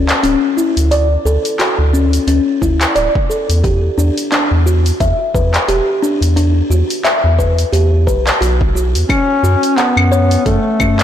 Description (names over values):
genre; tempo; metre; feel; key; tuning
organic downtempo; 88 BPM; 4/4; swing 57% on 16ths; E dorian; A4 = 440 Hz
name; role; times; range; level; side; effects
buzzing kalimba; arpeggios; 0.0-11.0 s; C#4 to F#5; -16 LUFS; left 1 dB; digital delay
round analog bass; bass; 0.0-11.0 s; D1 to F#2; -14 LUFS; equal; transformer saturation, sidechain pumping
deep house drum kit; drums; 0.1-11.0 s; cabasa, claves, handclaps, hi-hat; -18 LUFS; equal; none
electronic kick drum; drums; 2.6-11.0 s; none; -18 LUFS; equal; none
mellow duduk; melody; 9.1-11.0 s; A3 to C#4; -15 LUFS; left 2 dB; tape echo
room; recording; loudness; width
light reverb, digital ambience; blown-out, overdriven recording, overdrive; -11 LUFS; side -10 dB against mid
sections
0.0-11.0 A section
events
none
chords
0.0 Dmaj7sus2; 3.6 Em9; 9.1 F#m